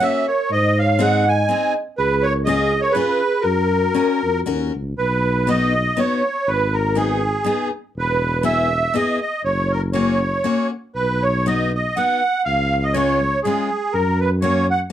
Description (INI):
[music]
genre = alpine folk, alpine dance band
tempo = 121 BPM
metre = 3/4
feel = swing 54% on 8ths, rubato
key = F# major, B major from 5.0 s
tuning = A4 = 438 Hz
[part]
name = musette accordion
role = melody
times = 0.0-14.8 s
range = G#4 to G#5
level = -19 LUFS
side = right 2 dB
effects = none
[part]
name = vibraphone with soft mallets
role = second line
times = 0.0-4.4 s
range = F#4 to D#5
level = -23 LUFS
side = right 1 dB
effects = none
[part]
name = picked steel-string acoustic guitar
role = accompaniment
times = 0.0-14.9 s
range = G#3 to A#4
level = -23 LUFS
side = left 5 dB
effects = none
[part]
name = mellow tuba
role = bass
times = 0.5-14.9 s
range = E1 to G#2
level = -22 LUFS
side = equal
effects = none
[sound]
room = moderate small room reverb, RT60 0.5 s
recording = dark, warm production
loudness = -17 LUFS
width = side -11 dB against mid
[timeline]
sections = 0.0-5.0 A section; 5.0-14.9 B section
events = none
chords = 0.0 F#; 0.5 G#; 2.0 C#; 3.5 F#; 5.0 B; 6.5 G#m; 8.0 E; 9.4 F#; 10.9 B; 12.5 C#; 13.9 F#